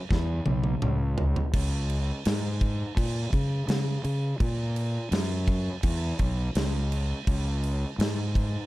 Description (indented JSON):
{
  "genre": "stoner and doom metal",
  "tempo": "84 BPM",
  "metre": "4/4",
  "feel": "straight",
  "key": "C# dorian",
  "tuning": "A4 = 440 Hz",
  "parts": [
    { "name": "fuzz fingered electric bass", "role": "bass", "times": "0.1-8.6 s", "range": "B1 to C#3", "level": "-27 LUFS", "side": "equal", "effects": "overdrive" },
    { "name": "big rock drum kit", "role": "drums", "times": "0.1-8.5 s", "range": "crash cymbal, kick drum, snare drum, toms", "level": "-28 LUFS", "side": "equal", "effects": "none" }
  ],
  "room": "little or no reverb",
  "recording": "dark, warm production",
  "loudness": "-25 LUFS",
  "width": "side -18 dB against mid",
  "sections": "0.0-8.7 A section",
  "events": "drum fill 0.1-1.5",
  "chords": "none",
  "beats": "0.10 0.82 | 1.53 2.25 2.97 3.68 | 4.40 5.12 5.84 6.55 | 7.27 7.99"
}